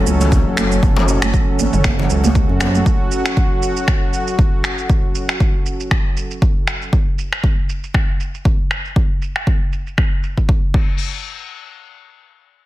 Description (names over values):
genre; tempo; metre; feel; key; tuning
afro house; 118 BPM; 4/4; swing 56% on 16ths; F# minor; A4 = 440 Hz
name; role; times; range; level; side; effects
warm analog pad; sustained chords; 0.0-6.9 s; F#3 to G#5; -22 LUFS; equal; chorus, sidechain pumping
smooth synth bass; bass; 0.0-2.8 s; F#1 to F#2; -18 LUFS; equal; sidechain pumping
deep house drum kit; drums; 0.1-10.9 s; crash cymbal, finger snaps, shaker, toms; -23 LUFS; right 1 dB; overdrive, low-pass filter on perc, studio reverb, soft clipping on snare, low-pass filter on snare, low-pass filter on toms, low-pass filter on cymbals
congas; percussion; 0.1-2.8 s; none; -24 LUFS; right 7 dB; none
djembe; percussion; 0.2-2.7 s; none; -25 LUFS; left 3 dB; none
electronic kick drum; drums; 0.3-10.9 s; none; -16 LUFS; equal; overdrive, studio reverb
room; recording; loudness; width
digital ambience; dense, heavily limited modern master; -15 LUFS; side -16 dB against mid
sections
0.0-11.0 A section; 11.0-12.7 B section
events
none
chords
0.0 F#m; 10.7 N.C.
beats
0.32 | 0.83 1.33 1.84 2.35 | 2.86 3.37 3.88 4.39 | 4.89 5.40 5.91 6.42 | 6.93 7.44 7.95 8.45 | 8.96 9.47 9.98 10.49